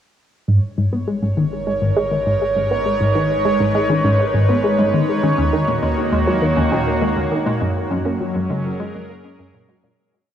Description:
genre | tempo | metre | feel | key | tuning
ambient, sequencer-driven space music | 101 BPM | 4/4 | straight | G# minor | A4 = 442 Hz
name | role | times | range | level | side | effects
evolving wavetable pad | sustained chords | 1.6-10.0 s | D#3 to B4 | -23 LUFS | equal | chorus, built-in reverb
warbly dusty pluck | arpeggios | 0.5-9.9 s | G#3 to C#4 | -28 LUFS | left 2 dB | chorus, auto-pan, ping-pong delay
resonant blip pluck | riff | 0.5-10.0 s | D#2 to B3 | -19 LUFS | equal | phaser, ping-pong delay
analog drone | bass | 1.4-10.0 s | G#1 to F#2 | -32 LUFS | equal | chorus
bubbling stepped-filter texture | texture | 1.2-10.0 s | C#5 | -22 LUFS | right 2 dB | chorus, built-in reverb
room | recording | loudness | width
wet huge ambient reverb, RT60 7.8 s | worn, warbling old tape, cassette tape, warbly pitch drift | -16 LUFS | side -9 dB against mid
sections
0.5-10.0 A section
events
fade-in on synth arpeggio sound 0.5-10.0; fade-in on ambient pad 0.5-10.0; fade-in on synth drone 0.5-10.0; fade-out 6.8-10.0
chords
0.5 G#m; 5.2 D#m; 7.6 F#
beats
| 0.48 1.08 1.67 2.26 | 2.86 3.45 4.05 4.64 | 5.23 5.83 6.42 7.02 | 7.61 8.20 8.80 9.39

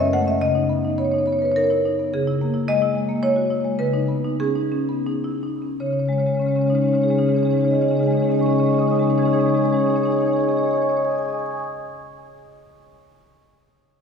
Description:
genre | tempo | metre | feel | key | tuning
classical, contemporary piece for solo marimba | 79-111 BPM | 3/4 | rubato | C# minor | A4 = 437 Hz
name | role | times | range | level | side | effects
marimba with medium hard mallets | solo | 0.0-11.7 s | F#2 to G#6 | -18 LUFS | left 1 dB | none
room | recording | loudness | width
wet church reverb, RT60 3.4 s | recorded in a church or concert hall, studio reverb | -18 LUFS | side -6 dB against mid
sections
0.0-2.1 A section; 2.1-5.8 B section; 5.8-10.2 C section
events
slowing down 1.3-5.8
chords
0.4 C#7sus2; 2.1 C#m6; 3.8 Badd9/C#; 5.8 C#sus2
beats
| 0.41 0.98 1.55 | 2.12 2.67 3.22 | 3.79 4.39 5.07 | 5.81 6.55 7.29 | 8.03 8.76 9.50

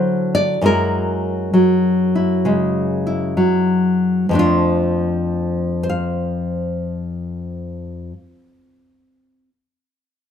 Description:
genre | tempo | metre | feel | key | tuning
solo jazz | 65 BPM | 4/4 | swing 67% on 8ths | unclear | A4 = 440 Hz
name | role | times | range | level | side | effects
nylon-string guitar | solo | 0.0-9.5 s | F2 to F5 | -16 LUFS | left 1 dB | none
room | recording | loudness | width
light reverb | close, detailed microphones | -16 LUFS | side -8 dB against mid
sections
0.0-4.3 A section; 4.3-8.0 B section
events
none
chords
0.0 D9; 0.6 Gb9; 4.3 F6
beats
| 0.60 1.52 2.45 3.37 | 4.29 5.21 6.14 7.06

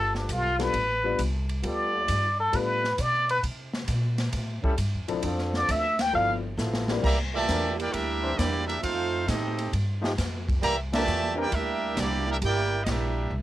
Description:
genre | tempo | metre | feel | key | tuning
jazz, big band swing | 134 BPM | 4/4 | swing 68% on 8ths | C major from 7.0 s | A4 = 444 Hz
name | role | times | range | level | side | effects
trumpet with plunger mute | melody | 0.0-6.3 s | D4 to G5 | -25 LUFS | equal | cassette tape
mellow trombone section | sustained chords | 0.0-11.5 s | E3 to C5 | -32 LUFS | equal | none
upright bass | bass | 0.0-13.4 s | G1 to C3 | -30 LUFS | equal | none
swinging big-band drum kit | drums | 0.1-13.0 s | crash cymbal, hi-hat, kick drum, ride cymbal, snare drum | -32 LUFS | equal | cassette tape
warm baby grand piano | accompaniment | 0.6-7.0 s | F3 to B4 | -31 LUFS | left 7 dB | none
brilliant trumpet section | melody | 7.0-13.3 s | Bb3 to Bb5 | -28 LUFS | equal | cassette tape
clear trombone section | second line | 7.0-13.3 s | Bb2 to G4 | -32 LUFS | right 8 dB | none
room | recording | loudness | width
moderate booth ambience, RT60 0.2 s | home recording on cassette | -24 LUFS | side -14 dB against mid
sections
0.0-7.0 A section; 7.0-13.4 B section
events
muted trumpet solo 0.0-7.0; drum fill 6.6-7.0; band accent 10.8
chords
0.0 G9; 3.4 Bbsus2; 4.3 A7; 5.2 Dm7; 6.1 G13; 7.0 C9; 8.8 F9; 10.6 C9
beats
0.29 0.74 1.19 | 1.64 2.09 2.54 2.98 | 3.43 3.88 4.33 4.78 | 5.23 5.68 6.13 6.58 | 7.03 7.48 7.93 8.38 | 8.82 9.27 9.72 10.17 | 10.62 11.07 11.52 11.97 | 12.41 12.86 13.31

